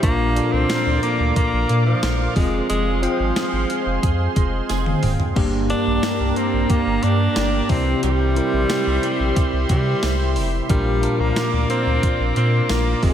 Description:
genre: 1980s-style pop.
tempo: 90 BPM.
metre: 4/4.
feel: straight.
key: unclear.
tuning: A4 = 442 Hz.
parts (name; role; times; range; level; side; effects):
bright alto saxophone; melody; 0.0-13.1 s; F3 to D4; -23 LUFS; equal; diffuse ambient delay.
bell-like tine electric piano; accompaniment; 0.0-13.1 s; G2 to G5; -23 LUFS; left 1 dB; medium stereo tremolo.
sweeping resonant pad; sustained chords; 0.0-13.1 s; G4 to D6; -28 LUFS; right 1 dB; chorus.
direct-recorded clean electric guitar; riff; 0.0-13.1 s; E3 to Ab4; -30 LUFS; right 6 dB; ensemble chorus, diffuse ambient delay.
saturated sub bass; bass; 0.0-13.1 s; D1 to C3; -22 LUFS; equal; none.
clean 12-bit digital drum machine; drums; 0.0-13.1 s; crash cymbal, hi-hat, kick drum, snare drum, tambourine, toms; -23 LUFS; equal; none.
tambourine; percussion; 0.7-12.9 s; none; -45 LUFS; left 6 dB; none.
room: moderate lush hall reverb, RT60 2.6 s.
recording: dreamy mix soaked in reverb.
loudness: -17 LUFS.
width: side -9 dB against mid.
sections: 0.0-13.1 A section.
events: drum fill 4.7-5.4.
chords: 0.0 Bb; 2.4 Fm; 5.4 Gm; 7.7 C; 10.7 Bb.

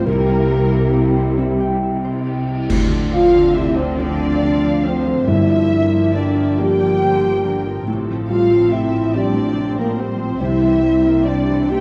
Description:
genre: cinematic, emotional film score for orchestra.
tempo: 46 BPM (dotted quarters).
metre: 6/8.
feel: rubato.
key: unclear.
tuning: A4 = 438 Hz.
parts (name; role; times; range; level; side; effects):
muted studio violin section; melody; 0.0-11.8 s; A4 to F5; -36 LUFS; equal; none.
mellow hollow silver concert flute; second line; 0.0-1.4 s; Bb4; -28 LUFS; equal; none.
muted studio violin section; second line; 0.0-11.8 s; Bb3 to G5; -30 LUFS; equal; none.
felt-muted upright piano; accompaniment; 0.0-11.8 s; C2 to G4; -27 LUFS; equal; none.
muted studio viola section; accompaniment; 0.0-11.8 s; C3 to E4; -28 LUFS; equal; none.
dark French horn section; sustained chords; 0.0-11.8 s; Bb3 to G4; -19 LUFS; equal; none.
concert harp; arpeggios; 0.0-11.8 s; G2 to G5; -29 LUFS; equal; none.
muted chamber double bass section; bass; 0.0-11.8 s; G1 to D2; -26 LUFS; equal; none.
muted studio cello section; bass; 0.0-11.8 s; G2 to D3; -28 LUFS; equal; none.
cymbal swell, clash cymbals and concert bass drum; percussion; 0.1-4.4 s; none; -28 LUFS; equal; none.
timpani; percussion; 5.3-6.5 s; G2; -26 LUFS; equal; none.
room: wet recital hall reverb, RT60 1.4 s.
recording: worn, warbling old tape, cassette tape, warbly pitch drift.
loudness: -17 LUFS.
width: mono.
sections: 0.0-2.7 A section; 2.7-11.8 A section.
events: band accent 2.7-3.6.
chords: 0.1 C7; 2.7 Dm7; 5.3 Gm7; 7.9 Fadd9/A; 10.4 C7.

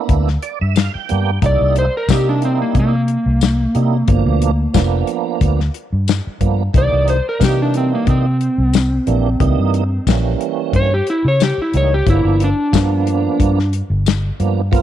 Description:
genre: straight-eighth soul blues.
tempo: 90 BPM.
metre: 4/4.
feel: straight.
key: unclear.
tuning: A4 = 436 Hz.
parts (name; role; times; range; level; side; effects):
tonewheel organ; accompaniment; 0.0-14.8 s; B2 to G5; -21 LUFS; right 12 dB; slow rotary speaker, overdrive, chorus vibrato.
vintage muted fingered electric bass; bass; 0.1-14.8 s; F1 to C#3; -16 LUFS; equal; none.
warm soul drum kit; drums; 0.1-14.8 s; hi-hat, kick drum, snare drum, tambourine; -17 LUFS; left 4 dB; none.
electric slide guitar; melody; 1.5-13.7 s; Bb3 to D5; -18 LUFS; left 1 dB; none.
room: small room ambience.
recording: 1960s-style stereo.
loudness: -14 LUFS.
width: side -11 dB against mid.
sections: 0.0-14.8 A section.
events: electric slide guitar solo 0.0-14.8; tonewheel organ fill 0.1-1.4.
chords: 0.0 G7#9; 1.4 C7#9; 4.1 G7#9; 6.7 C7#9; 9.4 C#dim7; 12.1 G7#9.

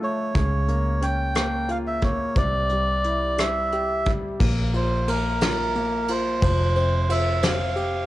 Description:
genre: six-eight pop ballad.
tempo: 60 BPM (dotted quarters).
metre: 6/8.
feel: straight.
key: unclear.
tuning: A4 = 439 Hz.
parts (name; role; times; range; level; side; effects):
melodica; melody; 0.0-8.1 s; Bb4 to G5; -25 LUFS; right 1 dB; cassette tape.
clear concert grand piano; accompaniment; 0.0-8.1 s; C3 to G4; -28 LUFS; left 2 dB; cassette tape.
vintage muted fingered electric bass; bass; 0.0-8.1 s; F1 to D2; -25 LUFS; equal; none.
soft brush drum kit; drums; 0.3-7.9 s; crash cymbal, hi-hat, kick drum, ride cymbal, rim click, snare drum; -26 LUFS; equal; cassette tape.
room: light reverb, studio ambience.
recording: home recording on cassette.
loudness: -20 LUFS.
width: side -15 dB against mid.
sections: 0.0-4.4 A section; 4.4-8.1 B section.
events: none.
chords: 0.4 Bbm/Db; 2.4 C; 4.4 Bb5; 6.4 Fsus2.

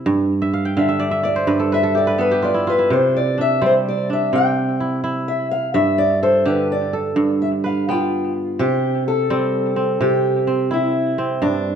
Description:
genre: west african traditional.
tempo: 85 BPM (dotted quarters).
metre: 12/8.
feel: straight.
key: C major.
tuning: A4 = 440 Hz.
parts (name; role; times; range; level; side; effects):
kora; arpeggios; 0.0-11.8 s; G2 to G5; -19 LUFS; right 3 dB; tape echo.
fingerpicked old ladder-braced acoustic guitar; melody; 0.8-11.8 s; D4 to G5; -19 LUFS; left 2 dB; none.
room: moderate recital hall reverb, RT60 1.6 s.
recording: close, detailed microphones.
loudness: -16 LUFS.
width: side -8 dB against mid.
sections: 0.0-8.6 A section; 8.6-11.8 B section.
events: steel-string acoustic guitar solo 0.0-8.6; kora fill 0.4-2.9.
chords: 0.1 G; 2.9 C; 5.8 G; 8.6 C.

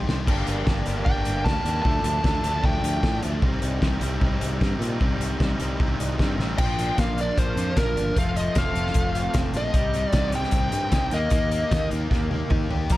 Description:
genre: indie rock.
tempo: 152 BPM.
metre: 4/4.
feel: straight.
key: C dorian.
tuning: A4 = 442 Hz.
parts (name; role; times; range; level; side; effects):
overdriven semi-hollow guitar; riff; 0.0-13.0 s; F3 to G4; -30 LUFS; left 4 dB; none.
modern bright fingered electric bass; bass; 0.0-13.0 s; F1 to Bb2; -28 LUFS; equal; none.
loose indie drum kit; drums; 0.1-13.0 s; crash cymbal, hi-hat, kick drum, snare drum, toms; -25 LUFS; equal; none.
raw garage guitar; riff; 0.3-13.0 s; F3 to G4; -31 LUFS; right 4 dB; overdrive, analog chorus, slapback echo.
smooth overdriven lead guitar; melody; 1.1-3.2, 6.6-13.0 s; Bb4 to Bb5; -27 LUFS; equal; slapback echo.
room: light reverb.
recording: dark, warm production.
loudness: -21 LUFS.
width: side -16 dB against mid.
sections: 0.3-6.6 A section; 6.6-13.0 B section.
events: drum fill 0.0, 6.4, 12.1-12.9.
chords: 0.3 Gmadd9; 1.9 Dm; 3.4 Cm; 6.6 Bb; 8.2 F; 9.7 Cm; 11.1 Eb.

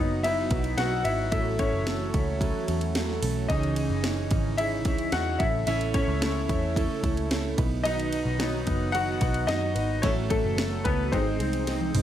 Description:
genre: piano-driven pop.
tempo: 110 BPM.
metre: 4/4.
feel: straight.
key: unclear.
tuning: A4 = 440 Hz.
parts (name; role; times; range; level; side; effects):
bright upright piano; accompaniment; 0.0-12.0 s; E3 to F#5; -29 LUFS; left 3 dB; none.
airy breathy pad; sustained chords; 0.0-12.0 s; B#2 to F#4; -37 LUFS; right 3 dB; chorus, phaser.
fingerpicked plugged-in steel-string acoustic guitar; riff; 0.0-12.0 s; A2 to B4; -32 LUFS; right 6 dB; none.
vintage muted picked electric bass; bass; 0.0-12.0 s; F#1 to F#2; -30 LUFS; equal; none.
house drum kit; drums; 0.2-12.0 s; hi-hat, kick drum, ride cymbal, snare drum, toms; -30 LUFS; equal; none.
room: light reverb, digital ambience.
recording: none.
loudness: -24 LUFS.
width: side -11 dB against mid.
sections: 0.0-12.0 A section.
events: upright piano solo 0.0-12.0; drum fill 11.7-12.0.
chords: 0.0 B; 1.3 F#m7; 3.5 C#madd9; 5.4 A; 7.6 B; 10.0 F#m7; 11.1 G#.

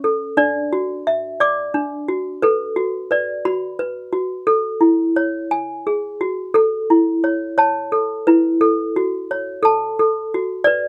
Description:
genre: children's music, lullaby.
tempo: 59 BPM (dotted quarters).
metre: 6/8.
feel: straight.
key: A major.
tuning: A4 = 440 Hz.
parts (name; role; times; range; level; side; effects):
toy piano; solo; 0.0-10.9 s; C#4 to D6; -19 LUFS; equal; none.
room: light reverb.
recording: close, detailed microphones.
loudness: -19 LUFS.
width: mono.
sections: 0.0-6.6 A section; 6.6-10.9 B section.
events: none.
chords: 0.4 Dadd9; 2.4 Bm; 4.5 A; 5.5 F#sus2/G#; 6.6 A; 8.6 F#m.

